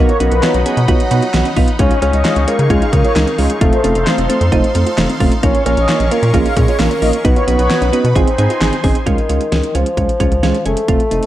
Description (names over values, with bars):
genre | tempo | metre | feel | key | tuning
synth-pop | 132 BPM | 4/4 | straight | Db major | A4 = 440 Hz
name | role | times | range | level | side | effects
dark bassoon | melody | 0.0-11.3 s | Eb3 to Db4 | -18 LUFS | left 1 dB | none
soft electric-piano-like synth keys | accompaniment | 0.0-11.2 s | Ab3 to Ab4 | -18 LUFS | right 4 dB | chorus, tremolo
sweeping resonant pad | sustained chords | 0.0-9.1 s | Db4 to Db6 | -24 LUFS | right 1 dB | chorus
soft round pluck | arpeggios | 0.0-9.0 s | C4 to F4 | -26 LUFS | left 5 dB | chorus, tape echo
rubbery square bass | bass | 0.0-11.2 s | F1 to Db3 | -17 LUFS | equal | none
mellow synth brass | second line | 0.1-7.9 s | Cb5 to F5 | -23 LUFS | left 2 dB | chorus, tape echo
pop drum kit | drums | 0.1-11.3 s | handclaps, hi-hat, kick drum, snare drum | -17 LUFS | equal | gated reverb
room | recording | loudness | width
light reverb | none | -11 LUFS | side -13 dB against mid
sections
0.0-9.1 A section; 9.1-11.3 B section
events
none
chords
0.0 Cb; 1.8 Dbadd9; 3.6 F7; 5.4 Bbm; 7.2 Cb; 8.2 Ab; 9.1 Dbadd9